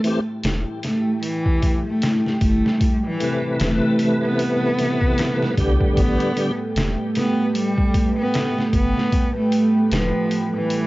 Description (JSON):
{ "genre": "trip hop", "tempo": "76 BPM", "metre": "4/4", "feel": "swing 58% on 16ths", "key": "A minor", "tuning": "A4 = 440 Hz", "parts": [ { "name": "warm cello", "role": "melody", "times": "0.0-10.9 s", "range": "E3 to B3", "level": "-22 LUFS", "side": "equal", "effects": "cassette tape, tape echo" }, { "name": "tonewheel organ", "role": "accompaniment", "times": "0.0-6.5 s", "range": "C3 to B4", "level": "-22 LUFS", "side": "equal", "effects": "overdrive, chorus vibrato, slow rotary speaker, tremolo, cassette tape" }, { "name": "dark analog pad", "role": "sustained chords", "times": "0.1-10.9 s", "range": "A3 to G5", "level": "-25 LUFS", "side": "right 1 dB", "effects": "chorus, cassette tape" }, { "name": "trip hop sampler-style drum kit", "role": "drums", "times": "0.0-10.9 s", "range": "hi-hat, kick drum, snare drum", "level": "-22 LUFS", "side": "equal", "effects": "none" }, { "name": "bowed-like drone", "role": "texture", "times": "0.7-10.9 s", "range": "G3 to G4", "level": "-36 LUFS", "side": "right 2 dB", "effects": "none" }, { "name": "warm sub bass", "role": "bass", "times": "0.4-10.1 s", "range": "E1 to C2", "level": "-23 LUFS", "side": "equal", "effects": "none" } ], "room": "light reverb", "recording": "home recording on cassette, nothing above 7.7 kHz", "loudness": "-18 LUFS", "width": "side -19 dB against mid", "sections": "0.0-10.9 A section", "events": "none", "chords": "0.0 Am7; 6.0 G" }